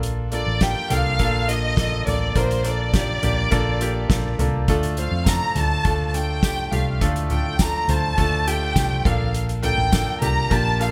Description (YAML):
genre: piano-driven pop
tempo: 103 BPM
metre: 4/4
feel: straight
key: unclear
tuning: A4 = 440 Hz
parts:
  - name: bright concert grand piano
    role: accompaniment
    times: 0.0-10.9 s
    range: A2 to C5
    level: -29 LUFS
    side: equal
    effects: none
  - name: vintage muted fingered electric bass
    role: bass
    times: 0.0-10.9 s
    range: A1 to F2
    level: -26 LUFS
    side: equal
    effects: none
  - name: soft-mallet drum kit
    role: drums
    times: 0.0-10.9 s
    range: hi-hat, kick drum, snare drum, toms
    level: -26 LUFS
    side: equal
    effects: none
  - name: warm studio violin section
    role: melody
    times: 0.3-10.9 s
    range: C5 to Bb5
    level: -27 LUFS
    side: equal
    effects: none
  - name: tambourine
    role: percussion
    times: 5.3-10.1 s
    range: none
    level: -36 LUFS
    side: equal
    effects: none
room: light reverb, small room reverb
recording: bright 1980s-style digital production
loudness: -21 LUFS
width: mono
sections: 0.0-10.9 A section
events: none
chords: 0.0 Bbmaj7; 4.7 Dm; 9.1 Bbmaj7